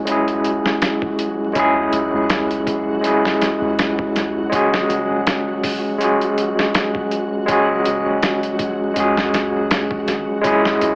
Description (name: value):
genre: trip hop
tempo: 81 BPM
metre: 4/4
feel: swing 55% on 16ths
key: unclear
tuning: A4 = 439 Hz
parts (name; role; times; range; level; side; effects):
- overdriven tine electric piano; accompaniment; 0.0-11.0 s; G#3 to G#4; -17 LUFS; equal; tremolo, low-pass filter, tape echo
- soft 808-style bass; bass; 0.0-11.0 s; F#1 to C#2; -36 LUFS; equal; none
- flickering grainy texture; texture; 0.0-11.0 s; F#3 to F#4; -29 LUFS; equal; none
- boom bap sampler-style drum kit; drums; 0.1-11.0 s; hi-hat, kick drum, snare drum; -21 LUFS; equal; overdrive, studio reverb
room: light reverb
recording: vinyl crackle, AM radio sound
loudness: -16 LUFS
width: side -35 dB against mid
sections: 0.0-11.0 A section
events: none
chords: 0.0 C#m; 4.5 F#sus2; 10.4 C#m